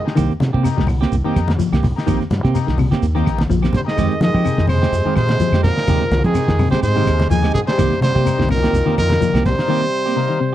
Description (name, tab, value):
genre	afrobeat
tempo	126 BPM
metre	4/4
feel	swing 54% on 16ths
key	unclear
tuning	A4 = 440 Hz
part	bright trumpet	melody	0.0, 3.8-10.5 s	Ab4 to Ab5	-21 LUFS	right 2 dB	slapback echo
part	clear trombone section	second line	0.0, 3.7-10.5 s	Ab2 to Ab3	-27 LUFS	left 9 dB	none
part	growling trombone	second line	0.0, 3.8-10.5 s	Eb3 to Eb4	-27 LUFS	right 5 dB	none
part	overdriven combo organ	accompaniment	0.1-10.4 s	Ab3 to Bb4	-29 LUFS	left 9 dB	none
part	cloth-damped thuddy drum kit	drums	0.1-9.7 s	hi-hat, kick drum, snare drum	-21 LUFS	equal	none
part	semi-hollow electric guitar	arpeggios	0.2-10.5 s	C3 to G3	-21 LUFS	left 6 dB	none
part	semi-hollow electric guitar	stabs	0.2-10.5 s	Eb3 to G4	-23 LUFS	right 8 dB	none
part	fingered electric bass	bass	0.2-9.5 s	Bb1 to F3	-19 LUFS	equal	none
part	claves	percussion	0.2-9.5 s	none	-40 LUFS	left 14 dB	none
part	shekere	percussion	0.2-9.6 s	none	-27 LUFS	right 2 dB	none
part	congas	percussion	0.4-9.6 s	none	-24 LUFS	left 2 dB	none
room	little or no reverb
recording	dry, close 1970s-style studio recording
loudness	-14 LUFS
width	side -12 dB against mid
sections	0.0-10.5 A section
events	break 9.7-10.5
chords	0.2 Cm7; 4.0 Fm9; 7.8 Cm7